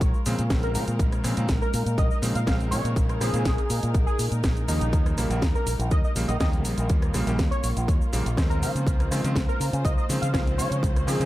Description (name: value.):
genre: nu-disco, nu disco.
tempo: 122 BPM.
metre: 4/4.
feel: straight.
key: Bb dorian.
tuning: A4 = 439 Hz.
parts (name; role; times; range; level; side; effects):
muted studio string section; sustained chords; 0.0-11.3 s; G3 to C5; -34 LUFS; equal; sidechain pumping.
fingered electric bass with an envelope filter; bass; 0.0-11.3 s; Bb1 to Db3; -26 LUFS; equal; none.
electronic kick drum; drums; 0.0-10.9 s; none; -24 LUFS; equal; overdrive.
house drum kit; drums; 0.0-11.3 s; cabasa, hi-hat, rim click, snare drum; -33 LUFS; equal; overdrive, dub echo.
bright electric grand piano; accompaniment; 0.3-11.3 s; Db3 to C4; -32 LUFS; equal; sidechain pumping, dub echo.
wide unison lead; melody; 0.6-11.3 s; Eb4 to F5; -33 LUFS; equal; dub echo.
room: digital ambience.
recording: echo-heavy mix.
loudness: -22 LUFS.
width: side -16 dB against mid.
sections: 0.0-11.3 A section.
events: none.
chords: 0.0 Bbm7; 4.7 Eb7; 8.6 Dbmaj7.